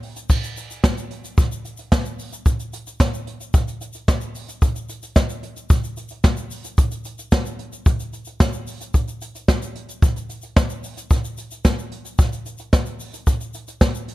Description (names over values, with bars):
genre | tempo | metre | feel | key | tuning
funk | 111 BPM | 4/4 | straight | none | none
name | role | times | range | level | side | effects
jazz brush drum kit | drums | 0.0-14.1 s | crash cymbal, hi-hat, kick drum, snare drum | -18 LUFS | equal | none
egg shaker | percussion | 0.2-14.1 s | none | -38 LUFS | left 5 dB | none
room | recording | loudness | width
little or no reverb | dark, warm production | -19 LUFS | side -17 dB against mid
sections
0.3-14.1 A section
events
none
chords
none